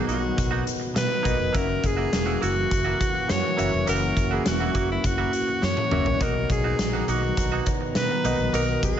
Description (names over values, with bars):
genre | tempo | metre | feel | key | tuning
1980s-style pop | 103 BPM | 4/4 | straight | B major | A4 = 440 Hz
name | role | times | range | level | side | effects
bright alto saxophone | melody | 0.0-9.0 s | E4 to C#5 | -27 LUFS | equal | ping-pong delay, shimmer reverb
tine electric piano | accompaniment | 0.0-9.0 s | B2 to F#5 | -30 LUFS | left 4 dB | phaser, shimmer reverb
chorused pulse-width pad | sustained chords | 0.0-9.0 s | D#3 to A#5 | -31 LUFS | right 1 dB | shimmer reverb
direct-recorded clean electric guitar | riff | 0.0-9.0 s | A#3 to F#4 | -33 LUFS | right 7 dB | lush chorus, shimmer reverb
vintage muted fingered electric bass | bass | 0.1-9.0 s | E1 to B2 | -29 LUFS | equal | none
huge arena drum kit | drums | 0.1-9.0 s | hi-hat, kick drum, snare drum, toms | -27 LUFS | equal | gated reverb
room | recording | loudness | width
light reverb, small room ambience | nothing above 7.8 kHz | -21 LUFS | side -9 dB against mid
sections
0.0-9.0 A section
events
drum fill 5.6-6.2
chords
0.0 Bmaj7; 1.5 F#7; 6.2 Bmaj7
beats
0.38 0.97 | 1.55 2.13 2.71 3.30 | 3.88 4.46 5.04 5.63 | 6.21 6.79 7.37 7.96 | 8.54